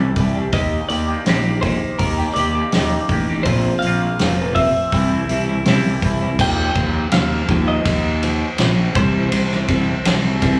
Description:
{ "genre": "quiet-loud alternative rock", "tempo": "82 BPM", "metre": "4/4", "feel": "straight", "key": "unclear", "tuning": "A4 = 442 Hz", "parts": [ { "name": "semi-hollow electric guitar", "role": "arpeggios", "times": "0.0-10.6 s", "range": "Bb2 to G4", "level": "-24 LUFS", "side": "equal", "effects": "phaser, slapback echo" }, { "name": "fuzz fingered electric bass", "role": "bass", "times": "0.0-10.6 s", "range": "F1 to Eb2", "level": "-22 LUFS", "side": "equal", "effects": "overdrive" }, { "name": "loose indie drum kit", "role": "drums", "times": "0.2-10.6 s", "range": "crash cymbal, hi-hat, kick drum, ride cymbal, snare drum", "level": "-24 LUFS", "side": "equal", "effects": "none" }, { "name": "twelve-string electric guitar", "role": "melody", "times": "0.5-10.4 s", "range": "Bb4 to G5", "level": "-26 LUFS", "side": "equal", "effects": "lush chorus, slapback echo, digital delay" } ], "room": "light reverb", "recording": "live gig heard through the venue's PA, club reverb, small room ambience", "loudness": "-18 LUFS", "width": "mono", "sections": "0.0-6.4 A section; 6.4-10.6 B section", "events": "none", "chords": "0.0 Cadd9; 0.5 Eb; 3.5 Bbsus2; 4.9 C; 6.4 Ebadd9; 9.0 C" }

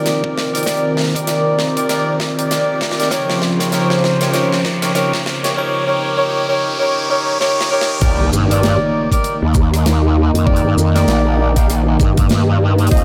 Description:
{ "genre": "glitch hop", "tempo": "98 BPM", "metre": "4/4", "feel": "swing 59% on 16ths", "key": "C phrygian", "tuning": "A4 = 440 Hz", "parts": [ { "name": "warm analog pad", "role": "sustained chords", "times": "0.0-13.0 s", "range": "Db3 to D5", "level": "-21 LUFS", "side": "equal", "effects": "chorus, sidechain pumping" }, { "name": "warm horn section", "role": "stabs", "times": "0.0-13.0 s", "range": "Eb4 to F5", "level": "-21 LUFS", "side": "equal", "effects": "sidechain pumping, tape echo" }, { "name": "riser and impact", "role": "sound effects", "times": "1.7-10.5 s", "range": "none", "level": "-29 LUFS", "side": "equal", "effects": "none" }, { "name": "deep dark ambient pad", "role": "texture", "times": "0.0-5.6 s", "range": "Db3 to G5", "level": "-30 LUFS", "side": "equal", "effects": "chorus, built-in reverb, sidechain pumping" }, { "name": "tight metal drum kit", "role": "drums", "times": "0.1-13.0 s", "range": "crash cymbal, hi-hat, rim click, shaker, snare drum", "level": "-25 LUFS", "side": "equal", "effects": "high-pass filter on hats, high-pass filter on cymbals, high-pass filter on snare, high-pass filter on perc, high-pass filter on room" }, { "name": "electronic kick drum", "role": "drums", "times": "0.2-13.0 s", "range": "none", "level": "-18 LUFS", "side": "equal", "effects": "high-pass filter on kick, high-pass filter on room" }, { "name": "growl bass", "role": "bass", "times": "8.0-13.0 s", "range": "Bb1 to G2", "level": "-17 LUFS", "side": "equal", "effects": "chorus, tube saturation" } ], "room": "moderate cathedral reverb, RT60 6.1 s", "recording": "dreamy mix soaked in reverb", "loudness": "-16 LUFS", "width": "mono", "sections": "0.0-8.0 A section; 8.0-13.0 B section", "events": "build-up 0.0-8.0; drum fill 0.0-5.6, 7.4-8.0; filter sweep on analog synth pad 0.0-8.0; riser 1.7-8.0; drop 8.0-13.0; impact 8.0-10.5", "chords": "0.0 Cm9; 3.1 Dbmaj7; 8.0 Cm9 (rootless)" }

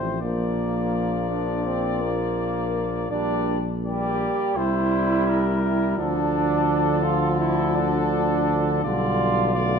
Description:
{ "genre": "classical, brass quintet", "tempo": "84 BPM", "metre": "4/4", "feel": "rubato", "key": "unclear", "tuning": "A4 = 440 Hz", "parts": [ { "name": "clear trumpet", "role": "melody", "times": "0.0-9.8 s", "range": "A4 to D5", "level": "-29 LUFS", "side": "left 8 dB", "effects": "none" }, { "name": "mellow flugelhorn", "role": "second line", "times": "0.0-9.8 s", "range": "Bb3 to G4", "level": "-25 LUFS", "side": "right 4 dB", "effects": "none" }, { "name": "brilliant trombone", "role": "accompaniment", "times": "0.0-9.8 s", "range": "C3 to G3", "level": "-30 LUFS", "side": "right 2 dB", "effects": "none" }, { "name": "mellow French horn", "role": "accompaniment", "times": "0.0-9.8 s", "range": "F3 to Bb3", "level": "-29 LUFS", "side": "left 4 dB", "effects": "none" }, { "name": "mellow bass trombone", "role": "bass", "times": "0.0-9.8 s", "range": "A1 to D2", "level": "-26 LUFS", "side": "left 1 dB", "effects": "none" } ], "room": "wet scoring stage reverb, RT60 1.9 s", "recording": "minimal, uncompressed stereo recording", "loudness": "-21 LUFS", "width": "side -6 dB against mid", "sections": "0.0-9.8 A section", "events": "none", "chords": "0.2 Bb; 3.1 Gm/Bb; 4.6 C; 6.0 Dm; 8.8 G7/B" }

